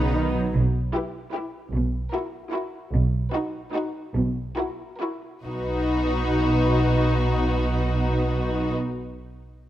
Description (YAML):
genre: classical, dramatic, fast romantic movement for symphony orchestra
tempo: 132-157 BPM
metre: 3/4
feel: straight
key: B major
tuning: A4 = 441 Hz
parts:
  - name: warm symphonic violin section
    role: melody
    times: 0.0-8.7 s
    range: A#4 to B4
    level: -33 LUFS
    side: left 2 dB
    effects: none
  - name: warm symphonic violin section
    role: second line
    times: 0.0-8.7 s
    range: D#4 to G4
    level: -31 LUFS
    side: left 4 dB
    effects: none
  - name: warm symphonic viola section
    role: accompaniment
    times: 0.0-8.7 s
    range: B3 to E4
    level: -28 LUFS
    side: equal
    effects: none
  - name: rich symphonic double bass section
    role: bass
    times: 0.0-8.7 s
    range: B1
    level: -26 LUFS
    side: right 2 dB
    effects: none
  - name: warm symphonic cello section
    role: bass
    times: 0.0-8.7 s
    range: B2 to F#3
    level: -26 LUFS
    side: right 1 dB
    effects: none
room: light reverb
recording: close, detailed microphones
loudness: -22 LUFS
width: side -13 dB against mid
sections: 0.5-5.5 A section; 5.5-8.0 B section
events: slowing down 2.3-5.5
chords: 0.0 B; 0.5 Em/B; 2.9 B; 4.2 F#7/B; 5.5 B